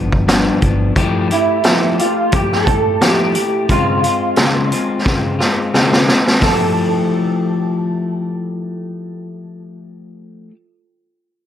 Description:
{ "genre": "indie pop, bedroom pop", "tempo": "88 BPM", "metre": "4/4", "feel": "swing 55% on 16ths", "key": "F lydian", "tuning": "A4 = 440 Hz", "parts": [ { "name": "electric guitar at the edge of break-up", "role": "accompaniment", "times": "0.0-10.6 s", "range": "G2 to G4", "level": "-18 LUFS", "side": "left 3 dB", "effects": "wide subtle chorus, vibrato effect" }, { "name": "vintage muted fingered electric bass", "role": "bass", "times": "0.0-0.9 s", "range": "G1", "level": "-20 LUFS", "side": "equal", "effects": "none" }, { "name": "raw garage drum kit", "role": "drums", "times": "0.1-6.6 s", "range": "hi-hat, kick drum, snare drum", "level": "-16 LUFS", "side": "equal", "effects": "none" }, { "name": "electric guitar through a small old amp", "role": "melody", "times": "1.3-10.5 s", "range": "E4 to A4", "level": "-18 LUFS", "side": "right 2 dB", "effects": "ensemble chorus, slapback echo" } ], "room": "light reverb, studio reverb", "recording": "none", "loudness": "-13 LUFS", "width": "side -10 dB against mid", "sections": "0.0-6.4 A section; 6.4-9.2 B section", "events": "drum fill 5.1-6.4", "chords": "0.0 G7; 1.0 Fmaj9; 3.7 Dbmaj7; 6.4 Fmaj9", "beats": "0.28 | 0.96 1.64 2.33 3.01 | 3.69 4.38 5.06 5.74 | 6.43 7.11 7.79 8.48" }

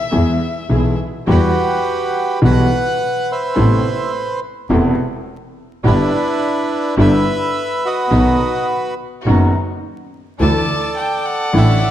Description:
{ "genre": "tango", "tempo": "105 BPM", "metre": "4/4", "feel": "rubato", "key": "E minor", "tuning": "A4 = 441 Hz", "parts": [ { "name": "clear violin", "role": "second line", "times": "0.0-1.0, 10.4-11.9 s", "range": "E5 to A5", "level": "-22 LUFS", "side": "left 3 dB", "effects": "none" }, { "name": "warm grand piano", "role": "accompaniment", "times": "0.1-11.8 s", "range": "E1 to G#4", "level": "-17 LUFS", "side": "left 1 dB", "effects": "none" }, { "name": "dark chamber string section", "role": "stabs", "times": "0.1-11.8 s", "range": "G3 to A4", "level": "-27 LUFS", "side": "right 2 dB", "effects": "none" }, { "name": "warm double bass", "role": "bass", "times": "0.1-11.8 s", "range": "E1 to E2", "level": "-17 LUFS", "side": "right 1 dB", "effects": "none" }, { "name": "bandoneon", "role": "melody", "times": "1.3-11.9 s", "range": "D4 to G5", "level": "-18 LUFS", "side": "right 1 dB", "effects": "none" } ], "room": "moderate scoring stage reverb, RT60 1.6 s", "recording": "dark, warm production, vinyl crackle", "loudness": "-14 LUFS", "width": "side -11 dB against mid", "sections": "0.0-1.3 A section; 1.3-11.9 B section", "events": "violin solo 0.0-1.3", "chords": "0.0 E; 1.3 Emadd9; 3.6 Amadd9; 5.8 Em7/G; 8.1 B; 10.4 Dsus2", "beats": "0.13 0.70 | 1.28 1.85 2.42 2.99 | 3.56 4.13 4.70 5.27 | 5.84 6.41 6.98 7.55 | 8.12 8.69 9.26 9.83 | 10.40 10.97 11.54" }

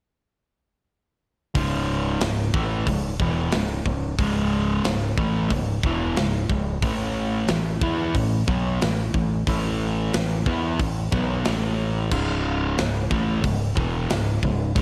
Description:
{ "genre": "heavy metal", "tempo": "91 BPM", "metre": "4/4", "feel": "straight", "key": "C# minor", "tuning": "A4 = 439 Hz", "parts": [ { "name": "sludgy distorted guitar", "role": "riff", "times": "1.5-14.8 s", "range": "C#2 to E4", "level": "-26 LUFS", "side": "equal", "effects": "overdrive" }, { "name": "modern bright fingered electric bass", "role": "bass", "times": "1.6-14.8 s", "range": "C#1 to E2", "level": "-30 LUFS", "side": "equal", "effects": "none" }, { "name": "tight metal drum kit", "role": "drums", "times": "1.6-14.8 s", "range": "crash cymbal, hi-hat, kick drum, snare drum", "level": "-29 LUFS", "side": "equal", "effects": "none" } ], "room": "moderate concert hall reverb, RT60 1.9 s", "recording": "big arena sound", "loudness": "-24 LUFS", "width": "mono", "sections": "1.6-14.8 A section", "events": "none", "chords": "1.6 C#m; 6.8 A5; 12.1 C#m", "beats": "| 1.55 2.21 2.87 3.53 | 4.19 4.85 5.51 6.17 | 6.83 7.50 8.16 8.82 | 9.48 10.14 10.80 11.46 | 12.12 12.78 13.44 14.10 | 14.77" }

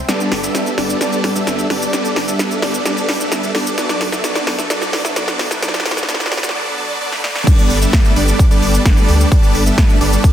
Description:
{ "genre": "EDM, festival progressive house", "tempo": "130 BPM", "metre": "4/4", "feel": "straight", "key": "G major", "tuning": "A4 = 439 Hz", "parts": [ { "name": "big supersaw lead", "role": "riff", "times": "0.1-10.3 s", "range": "F#3 to E5", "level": "-18 LUFS", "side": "equal", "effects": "sidechain pumping, low-pass filter, dub echo" }, { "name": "big-room dance drum kit", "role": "drums", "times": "0.1-10.3 s", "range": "crash cymbal, hi-hat, shaker, snare drum", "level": "-20 LUFS", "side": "equal", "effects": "none" }, { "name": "saturated sub bass", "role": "bass", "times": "0.3-10.2 s", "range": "D1 to D2", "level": "-17 LUFS", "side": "equal", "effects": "sidechain pumping" }, { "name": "electronic kick drum", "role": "drums", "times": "7.5-10.3 s", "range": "none", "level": "-11 LUFS", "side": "equal", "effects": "none" } ], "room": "light reverb", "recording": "dense, heavily limited modern master, high-pass filter", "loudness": "-13 LUFS", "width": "side -10 dB against mid", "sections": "0.0-7.5 A section; 7.5-10.3 B section", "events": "build-up 0.0-7.5; drum fill 0.0-6.5, 7.1-7.5; filter sweep on supersaw synth 0.0-7.5; filter sweep 0.0-7.5; drop 7.5-10.3", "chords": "0.1 Gadd9; 3.8 D; 7.5 Gadd9", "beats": "| 0.09 0.55 1.01 1.47 | 1.93 2.39 2.85 3.32 | 3.78 4.24 4.70 5.16 | 5.62 6.09 6.55 7.01 | 7.47 7.93 8.39 8.86 | 9.32 9.78 10.24" }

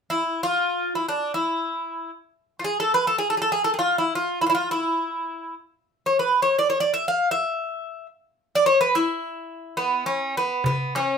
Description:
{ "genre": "Turkish makam ensemble", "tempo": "free time", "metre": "none", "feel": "none", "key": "E makam hicaz", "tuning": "A4 = 441 Hz", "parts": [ { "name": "Greek bouzouki", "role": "melody", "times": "0.1-11.2 s", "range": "B3 to F5", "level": "-21 LUFS", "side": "equal", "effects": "none" }, { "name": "darbuka", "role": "percussion", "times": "10.6-11.1 s", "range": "none", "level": "-26 LUFS", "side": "equal", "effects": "none" } ], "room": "moderate studio reverb, RT60 0.5 s", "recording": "minimal, uncompressed stereo recording", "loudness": "-21 LUFS", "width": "side -6 dB against mid", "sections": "0.0-10.6 A section", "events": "none", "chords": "none", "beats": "free time" }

